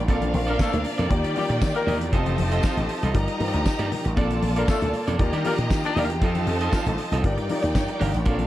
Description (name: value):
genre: disco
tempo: 117 BPM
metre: 4/4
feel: straight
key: unclear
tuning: A4 = 441 Hz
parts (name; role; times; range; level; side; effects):
- rich studio violin section; second line; 0.0-8.5 s; D4 to Bb5; -30 LUFS; right 1 dB; none
- warm grand piano; accompaniment; 0.0-8.5 s; Bb2 to D5; -30 LUFS; left 3 dB; none
- clear studio string section; sustained chords; 0.0-8.5 s; Eb3 to D5; -32 LUFS; equal; none
- slap bass with an envelope filter; bass; 0.0-8.5 s; F1 to Eb3; -26 LUFS; equal; none
- electric guitar at the edge of break-up; accompaniment; 0.1-8.5 s; Bb3 to F5; -32 LUFS; right 5 dB; spring reverb
- damped 70s drum kit; drums; 0.1-8.5 s; hi-hat, kick drum, snare drum; -26 LUFS; equal; none
- congas; percussion; 0.2-8.5 s; none; -34 LUFS; left 4 dB; none
- warm horn section; stabs; 0.5-6.0 s; G3 to D5; -28 LUFS; left 4 dB; none
- tambourine; percussion; 0.6-7.9 s; none; -43 LUFS; left 13 dB; none
room: light reverb, small room ambience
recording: dark, warm production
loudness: -21 LUFS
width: side -14 dB against mid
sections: 0.0-8.5 A section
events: none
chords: 0.1 Bbmaj7; 1.1 Ebmaj7; 2.1 F7; 3.2 Ebmaj7/G; 4.2 Bbmaj7; 5.2 Ebmaj7; 6.2 F7; 7.2 Ebmaj7/G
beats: | 0.08 0.59 1.10 1.62 | 2.13 2.64 3.15 3.66 | 4.17 4.69 5.20 5.71 | 6.22 6.73 7.24 7.75 | 8.27